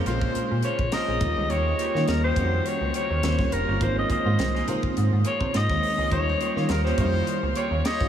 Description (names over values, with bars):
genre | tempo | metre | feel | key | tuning
polished 1980s jazz-funk pop | 104 BPM | 4/4 | swing 54% on 16ths | unclear | A4 = 440 Hz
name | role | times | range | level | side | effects
growling alto saxophone | melody | 0.0-8.1 s | Bb4 to Eb5 | -27 LUFS | left 1 dB | tape echo
FM electric piano | accompaniment | 0.0-8.1 s | Db3 to Ab4 | -29 LUFS | equal | phaser, lush chorus
semi-hollow electric guitar | riff | 0.0-8.0 s | G3 to Eb5 | -34 LUFS | right 6 dB | lush chorus
clear horn section | second line | 0.1-1.2, 6.3-8.1 s | F3 to Db5 | -35 LUFS | left 1 dB | tape echo
metallic FM bass | bass | 0.1-8.1 s | F1 to Eb3 | -26 LUFS | equal | none
tight funk drum kit | drums | 0.1-8.1 s | hi-hat, kick drum, snare drum | -31 LUFS | equal | none
room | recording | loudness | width
wet huge ambient reverb, RT60 4.9 s | dreamy mix soaked in reverb, small room ambience | -22 LUFS | side -9 dB against mid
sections
0.0-8.1 A section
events
none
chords
0.0 Bbm9; 1.2 Eb9; 3.2 Eb13; 3.8 Ab69; 6.1 Eb9